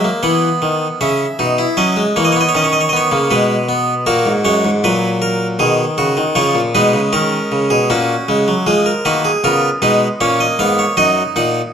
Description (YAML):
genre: classical, baroque-style 4-part fugue for harpsichord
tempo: 78 BPM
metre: 3/4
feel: straight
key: unclear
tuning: A4 = 440 Hz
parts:
  - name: harpsichord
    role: solo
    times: 0.0-11.6 s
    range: F#2 to F#5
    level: -12 LUFS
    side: equal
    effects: none
room: wet recital hall reverb, RT60 1.6 s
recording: close, detailed microphones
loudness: -12 LUFS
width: side -7 dB against mid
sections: 0.0-8.7 A section; 8.7-11.7 B section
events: none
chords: 0.0 B; 1.0 C#m7; 1.8 F#7; 3.3 G#m/B; 4.1 F#; 5.6 G#m7/B; 6.4 C#7; 7.9 F#/A#; 8.7 Fdim; 10.2 A#m; 11.0 D#m/F#